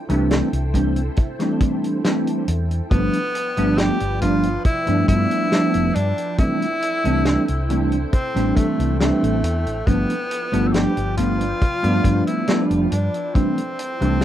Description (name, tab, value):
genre	vaporwave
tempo	69 BPM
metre	4/4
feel	straight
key	C major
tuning	A4 = 440 Hz
part	soft string machine	sustained chords	0.0-14.2 s	F3 to G5	-32 LUFS	equal	phaser, ensemble chorus, plate reverb
part	bell-like tine electric piano	accompaniment	0.1-14.2 s	E3 to D4	-21 LUFS	equal	ensemble chorus, vintage 12-bit sampler grit, tape echo, plate reverb
part	hollow-body short-scale fingered electric bass	bass	0.1-14.2 s	F1 to G2	-22 LUFS	equal	none
part	warm soul drum kit	drums	0.1-14.2 s	hi-hat, snare drum	-26 LUFS	equal	none
part	kick drum	drums	0.7-13.5 s	none	-19 LUFS	equal	none
part	breathy tenor saxophone	melody	2.9-14.2 s	A3 to A4	-24 LUFS	equal	tape echo, plate reverb
room	moderate studio reverb, RT60 0.5 s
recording	rough home demo mix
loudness	-17 LUFS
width	side -11 dB against mid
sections	0.0-14.2 A section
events	none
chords	0.0 C6; 2.9 G7; 6.4 C6; 9.9 G7; 13.3 C6